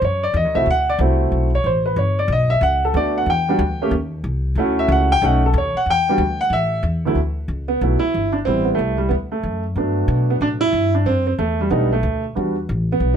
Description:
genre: jazz piano trio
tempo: 185 BPM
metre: 4/4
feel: swing 64% on 8ths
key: D major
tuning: A4 = 441 Hz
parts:
  - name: warm baby grand piano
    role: melody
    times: 0.0-13.2 s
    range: D2 to G5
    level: -18 LUFS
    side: right 1 dB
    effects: none
  - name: upright bass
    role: bass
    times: 0.0-13.2 s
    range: G1 to B2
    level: -20 LUFS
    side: left 1 dB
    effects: none
room: light reverb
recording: none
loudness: -16 LUFS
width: side -8 dB against mid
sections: 0.0-7.2 A section; 7.2-13.2 B section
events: grand piano solo 0.0-7.2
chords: 0.0 Bm; 0.7 D7; 2.0 Gmaj7; 3.3 Em7; 3.9 Cm; 4.6 Dmaj7; 5.2 B7; 5.9 Em7; 6.5 A5; 7.2 Dsus2; 8.5 Am7; 9.1 D; 9.8 Gmaj9; 11.1 Am6; 11.7 B7alt; 12.4 Em7

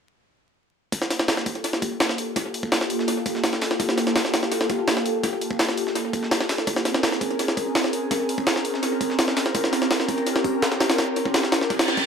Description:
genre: drum and bass, jungle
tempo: 167 BPM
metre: 4/4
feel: straight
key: G minor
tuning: A4 = 440 Hz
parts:
  - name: airy breathy pad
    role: sustained chords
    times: 1.2-12.1 s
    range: Bb3 to Bb4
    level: -25 LUFS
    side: equal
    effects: chorus, phaser
  - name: breakbeat sampler-style drum kit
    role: drums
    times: 0.9-12.1 s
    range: hi-hat, snare drum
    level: -31 LUFS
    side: right 1 dB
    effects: high-pass filter on hats, small room ambience, high-pass filter on snare, analog delay
  - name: jungle sampler-style drum kit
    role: drums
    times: 0.9-12.1 s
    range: hi-hat, kick drum, snare drum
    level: -23 LUFS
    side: equal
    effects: high-pass filter on kick, small room ambience, high-pass filter on hats, high-pass filter on snare, analog delay
  - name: reverse cymbal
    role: sound effects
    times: 11.8-12.1 s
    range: none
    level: -23 LUFS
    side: right 1 dB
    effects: none
room: moderate plate reverb, RT60 1.6 s, digital ambience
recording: echo-heavy mix, vinyl crackle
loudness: -21 LUFS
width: side -6 dB against mid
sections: 0.9-12.1 A section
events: filter sweep on analog synth pad 0.9-12.1; reverse cymbal 11.8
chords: 0.9 Gm9; 6.7 Bbm9

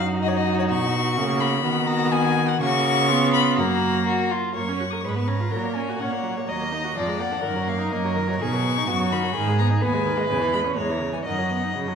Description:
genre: quick classical-period movement for string quartet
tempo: 125 BPM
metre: 2/4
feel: rubato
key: F# major, B major from 8.4 s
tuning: A4 = 441 Hz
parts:
  - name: rich violin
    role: melody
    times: 0.0-11.7 s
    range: C#5 to D#6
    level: -27 LUFS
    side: left 6 dB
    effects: none
  - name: rich violin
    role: second line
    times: 0.0-11.9 s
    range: E#4 to D#5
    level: -27 LUFS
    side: left 3 dB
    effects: none
  - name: rich viola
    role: accompaniment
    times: 0.0-11.9 s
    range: C#3 to A#4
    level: -27 LUFS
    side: right 1 dB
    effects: none
  - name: rich cello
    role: bass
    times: 0.0-11.9 s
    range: D#2 to D#3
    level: -25 LUFS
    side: right 4 dB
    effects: none
room: wet recital hall reverb, RT60 1.4 s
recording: recorded in a church or concert hall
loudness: -20 LUFS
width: side -6 dB against mid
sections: 0.0-4.6 A section; 4.6-11.9 A section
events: none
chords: 0.0 D#m/F#; 0.7 B; 1.2 F#/C#; 1.6 B/D#; 2.6 F#/C#; 3.1 C#7; 3.6 F#; 5.0 C#7/G#; 5.5 F#/A#; 6.5 D#m; 7.0 A#7/E#; 7.5 D#m/F#; 8.4 B; 9.3 G#m; 10.3 C#m/E; 11.3 B/F#

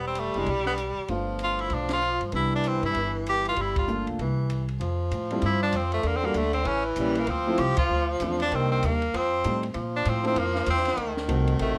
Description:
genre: jazz, small-group swing and bop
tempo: 194 BPM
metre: 4/4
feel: swing 62% on 8ths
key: C major, F major from 4.8 s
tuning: A4 = 440 Hz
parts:
  - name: edgy tenor saxophone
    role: melody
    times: 0.0-11.8 s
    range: E3 to G4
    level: -30 LUFS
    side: equal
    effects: none
  - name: bright tenor saxophone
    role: second line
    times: 0.0-11.8 s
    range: D3 to G3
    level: -33 LUFS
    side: equal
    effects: none
  - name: upright bass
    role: bass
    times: 0.0-11.8 s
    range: E1 to Bb2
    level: -32 LUFS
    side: equal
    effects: none
  - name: compact cocktail drum kit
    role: drums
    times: 0.2-11.7 s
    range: hi-hat, kick drum, ride cymbal, snare drum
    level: -37 LUFS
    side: equal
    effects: none
  - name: warm concert grand piano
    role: accompaniment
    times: 0.4-11.7 s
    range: F3 to Gb4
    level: -33 LUFS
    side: equal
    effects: none
room: moderate studio reverb, RT60 0.6 s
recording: none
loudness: -26 LUFS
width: mono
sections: 0.0-4.8 A section; 4.8-11.8 B section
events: band accent 1.9, 3.7, 7.7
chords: 0.0 Em; 1.1 G9; 2.3 Cmaj7; 3.6 Gm7; 4.2 C; 4.8 Fadd9; 6.0 Em7b5; 6.7 A7b9; 7.3 Dm9; 8.5 Cm7; 9.1 F9; 9.7 Bbmaj7sus2; 11.0 D7b9

